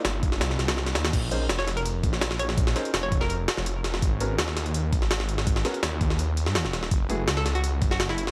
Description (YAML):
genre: drum and bass, jungle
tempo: 166 BPM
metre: 4/4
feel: straight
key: unclear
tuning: A4 = 438 Hz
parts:
  - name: warbly tape-like pad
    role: sustained chords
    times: 0.0-1.1 s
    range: Bb3 to F4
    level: -45 LUFS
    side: equal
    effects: none
  - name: detuned saw bass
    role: bass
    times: 0.0-8.3 s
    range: Eb1 to Ab2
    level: -30 LUFS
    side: equal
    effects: none
  - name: jungle sampler-style drum kit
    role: drums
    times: 0.0-8.3 s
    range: crash cymbal, hi-hat, kick drum, snare drum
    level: -28 LUFS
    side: equal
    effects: none
  - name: dark concert grand piano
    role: stabs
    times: 1.3-7.2 s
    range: A3 to C5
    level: -37 LUFS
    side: equal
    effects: none
  - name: hollow square pluck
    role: melody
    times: 1.6-3.4, 7.4-8.2 s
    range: Fb4 to Db5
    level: -35 LUFS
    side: equal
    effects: chorus, vintage 12-bit sampler grit, dub echo
room: little or no reverb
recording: vinyl crackle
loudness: -26 LUFS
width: mono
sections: 0.0-1.1 A section; 1.1-8.3 A section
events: drop 0.0-1.1, 1.1-8.3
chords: 0.0 Cm11; 1.1 Bbm; 4.0 Ab5; 6.9 Gbm